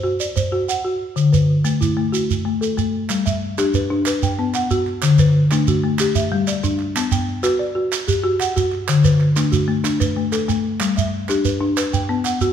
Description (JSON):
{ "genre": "southern african traditional, mbira-style interlocking cycle", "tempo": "124 BPM (dotted quarters)", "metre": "12/8", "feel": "straight", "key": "G major", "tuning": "A4 = 440 Hz", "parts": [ { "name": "folk marimba with medium hard mallets", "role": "arpeggios", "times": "0.0-12.5 s", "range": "D3 to G5", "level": "-18 LUFS", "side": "left 2 dB", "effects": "none" }, { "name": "shekere", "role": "percussion", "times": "0.2-12.5 s", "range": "none", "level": "-23 LUFS", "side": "right 6 dB", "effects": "none" }, { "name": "group handclap", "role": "percussion", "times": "3.1-12.4 s", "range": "none", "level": "-31 LUFS", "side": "right 6 dB", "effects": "none" } ], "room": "wet recital hall reverb, RT60 1.7 s", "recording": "minimal, uncompressed stereo recording", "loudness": "-16 LUFS", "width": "side -9 dB against mid", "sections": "0.0-3.1 A section; 3.1-12.5 B section", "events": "none", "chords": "0.0 Bm (rootless); 1.2 D; 3.1 G; 4.1 B5; 5.0 D; 6.0 G5; 7.0 Bm; 8.9 D; 10.8 G; 11.8 B5" }